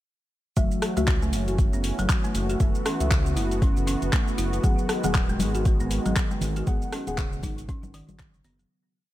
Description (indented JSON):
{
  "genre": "afro house",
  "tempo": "118 BPM",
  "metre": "4/4",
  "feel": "swing 58% on 16ths",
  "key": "F# dorian",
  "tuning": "A4 = 440 Hz",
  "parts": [
    { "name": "warm analog pad", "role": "sustained chords", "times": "0.6-8.7 s", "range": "D#3 to F#4", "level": "-32 LUFS", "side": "equal", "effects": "chorus, vintage 12-bit sampler grit, sidechain pumping" },
    { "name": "folk marimba with medium mallets", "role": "arpeggios", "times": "0.6-8.7 s", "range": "C#3 to F#4", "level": "-31 LUFS", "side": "equal", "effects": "sidechain pumping, tape echo" },
    { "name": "deep mellow chord stab", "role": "stabs", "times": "0.6-8.7 s", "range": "A3 to F#5", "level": "-34 LUFS", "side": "left 3 dB", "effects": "chorus, sidechain pumping, tape echo" },
    { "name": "round analog bass", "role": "bass", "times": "0.6-8.7 s", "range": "D#1 to C#2", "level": "-29 LUFS", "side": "equal", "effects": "sidechain pumping" },
    { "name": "deep house drum kit", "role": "drums", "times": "0.6-8.7 s", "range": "handclaps, hi-hat, rim click, shaker", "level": "-31 LUFS", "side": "equal", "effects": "overdrive" },
    { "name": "electronic kick drum", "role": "drums", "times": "0.6-8.3 s", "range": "none", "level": "-24 LUFS", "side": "equal", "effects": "overdrive" },
    { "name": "congas", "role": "percussion", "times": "5.0-8.6 s", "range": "none", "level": "-32 LUFS", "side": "left 2 dB", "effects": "none" }
  ],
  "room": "little or no reverb",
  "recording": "none",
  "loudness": "-22 LUFS",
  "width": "side -15 dB against mid",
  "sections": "0.6-8.7 drop",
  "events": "drop 0.6-8.7; fade-out 6.0-8.7",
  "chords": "0.6 F#m7; 4.6 G#m7",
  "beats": "| 0.57 1.08 1.58 2.09 | 2.60 3.11 3.62 4.13 | 4.63 5.14 5.65 6.16 | 6.67 7.18 7.69 8.20"
}